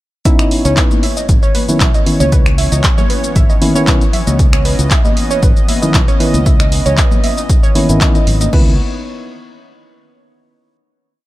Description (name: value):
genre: deep house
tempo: 116 BPM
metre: 4/4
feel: swing 54% on 16ths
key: C# minor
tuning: A4 = 440 Hz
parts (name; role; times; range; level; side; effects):
- warm analog pad; sustained chords; 0.3-8.8 s; E3 to D#5; -23 LUFS; left 1 dB; chorus, sidechain pumping
- warbly dusty pluck; arpeggios; 0.3-8.8 s; B4 to E5; -21 LUFS; right 3 dB; chorus, sidechain pumping, tape echo
- mellow tine electric piano; stabs; 0.3-8.7 s; D#3 to E4; -17 LUFS; equal; sidechain pumping, ping-pong delay
- electronic kick drum; drums; 0.3-8.6 s; none; -12 LUFS; equal; none
- punchy analog drum machine; drums; 0.3-8.6 s; crash cymbal, finger snaps, handclaps, hi-hat, shaker; -20 LUFS; equal; none
- fingered electric bass; bass; 0.7-8.8 s; G#1 to C#2; -16 LUFS; equal; tube saturation, sidechain pumping
- congas; percussion; 0.9-8.5 s; none; -25 LUFS; left 5 dB; sidechain pumping on perc
room: little or no reverb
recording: none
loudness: -10 LUFS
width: side -17 dB against mid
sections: 0.3-8.5 drop; 8.5-10.6 final chord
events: drop 0.3-8.5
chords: 0.3 C#m9